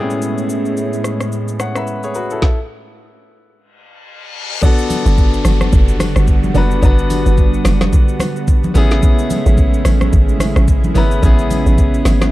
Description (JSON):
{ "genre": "amapiano", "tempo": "109 BPM", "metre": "4/4", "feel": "swing 58% on 16ths", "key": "A major", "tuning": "A4 = 439 Hz", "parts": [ { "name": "clear baby grand piano", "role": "accompaniment", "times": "0.0-12.3 s", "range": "A2 to F#5", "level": "-20 LUFS", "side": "left 2 dB", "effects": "none" }, { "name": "lush unison pad", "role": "sustained chords", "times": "0.0-12.3 s", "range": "A2 to F#4", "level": "-21 LUFS", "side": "right 2 dB", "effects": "chorus" }, { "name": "smooth R&B drum kit", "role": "drums", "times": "0.1-12.3 s", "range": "hi-hat, kick drum, rim click, shaker, snare drum", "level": "-15 LUFS", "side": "equal", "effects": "none" }, { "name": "reverse cymbal and downlifter", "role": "sound effects", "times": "4.0-9.0 s", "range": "none", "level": "-29 LUFS", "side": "left 2 dB", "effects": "none" }, { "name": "congas", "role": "percussion", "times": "4.6-12.3 s", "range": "none", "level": "-22 LUFS", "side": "right 1 dB", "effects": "none" }, { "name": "hollow log drum bass", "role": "bass", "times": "5.1-12.3 s", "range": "F#1 to A1", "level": "-14 LUFS", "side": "equal", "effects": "none" } ], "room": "digital ambience", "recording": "dark, warm production", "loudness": "-12 LUFS", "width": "side -17 dB against mid", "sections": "0.0-4.6 A section; 4.6-12.3 B section", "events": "stop 2.4-4.6; reverse cymbal 4.0-4.6; drop 4.6-12.3", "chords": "0.0 Amaj7; 4.6 Gmaj7; 8.8 Amaj7", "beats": "| 0.22 0.77 1.32 1.87 | 2.42 2.97 3.52 4.07 | 4.62 5.17 5.72 6.28 | 6.83 7.38 7.93 8.48 | 9.03 9.58 10.13 10.68 | 11.23 11.78" }